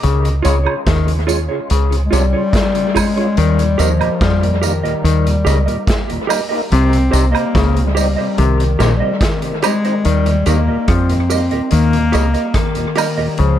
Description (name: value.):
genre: roots reggae.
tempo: 72 BPM.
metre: 4/4.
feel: straight.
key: Eb mixolydian.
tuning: A4 = 440 Hz.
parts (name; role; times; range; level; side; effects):
mellow clav; riff; 0.0-13.6 s; Bb2 to F3; -21 LUFS; left 7 dB; none.
deep dub fingered electric bass; bass; 0.0-13.6 s; Bb1 to F2; -15 LUFS; right 1 dB; none.
vintage drum kit; drums; 0.0-13.6 s; hi-hat, kick drum, rim click, snare drum; -21 LUFS; equal; dub echo.
tonewheel organ; accompaniment; 0.2-13.3 s; Eb2 to F4; -26 LUFS; left 1 dB; overdrive, chorus vibrato, slow rotary speaker, dub echo.
mellow electric guitar; accompaniment; 0.4-13.3 s; F4 to Eb5; -22 LUFS; right 6 dB; lush chorus, tape echo.
tambourine and woodblock; percussion; 0.4-13.2 s; none; -23 LUFS; right 9 dB; none.
mellow bass clarinet; melody; 2.1-13.6 s; Eb3 to C4; -18 LUFS; left 3 dB; tape echo.
room: light reverb, small room ambience.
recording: echo-heavy mix.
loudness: -13 LUFS.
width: side -11 dB against mid.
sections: 0.0-10.1 A section; 10.1-13.6 B section.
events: bass clarinet solo 0.0-10.1.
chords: 0.0 Db; 3.4 Eb; 6.7 Cm; 10.1 Eb.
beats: | 0.04 0.87 1.71 2.54 | 3.38 4.21 5.05 5.88 | 6.72 7.55 8.38 9.22 | 10.05 10.89 11.72 12.56 | 13.39.